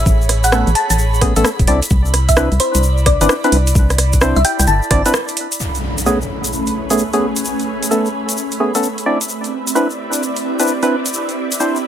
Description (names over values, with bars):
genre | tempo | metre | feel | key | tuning
UK garage, two-step garage | 130 BPM | 4/4 | swing 65% on 16ths | unclear | A4 = 440 Hz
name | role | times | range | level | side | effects
thumb-piano-like synth pluck | melody | 0.0-5.1 s | C5 to A5 | -19 LUFS | left 1 dB | wide subtle chorus, digital delay
organ-like FM bass | bass | 0.0-5.0 s | E1 to C2 | -15 LUFS | equal | none
airy breathy pad | texture | 0.0-11.9 s | A3 to B5 | -24 LUFS | right 1 dB | chorus, phaser, sidechain pumping
electronic kick drum | drums | 0.1-5.0 s | none | -15 LUFS | equal | overdrive, studio reverb
egg shaker | percussion | 0.1-11.8 s | none | -24 LUFS | left 3 dB | none
garage drum kit | drums | 0.3-11.6 s | hi-hat, rim click | -20 LUFS | right 2 dB | overdrive, studio reverb
percussive organ stab | stabs | 0.5-11.8 s | A3 to D5 | -18 LUFS | equal | chorus, vintage 12-bit sampler grit, digital delay
soft string machine | sustained chords | 6.0-11.9 s | A3 to E5 | -27 LUFS | right 1 dB | ensemble chorus, sidechain pumping
impact | sound effects | 5.6-7.4 s | none | -25 LUFS | equal | none
room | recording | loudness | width
moderate studio ambience, RT60 0.5 s | none | -13 LUFS | side -10 dB against mid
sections
0.0-5.6 A section; 5.6-11.9 B section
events
break 5.1-5.6; band accent 5.1; impact 5.6-7.4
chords
0.0 Amaj9; 1.7 Cmaj9; 5.6 Amaj9; 9.1 Cmaj9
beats
| 0.06 0.52 0.98 1.45 | 1.91 2.37 2.83 3.29 | 3.75 4.22 4.68 5.14 | 5.60 6.06 6.52 6.99 | 7.45 7.91 8.37 8.83 | 9.29 9.75 10.22 10.68 | 11.14 11.60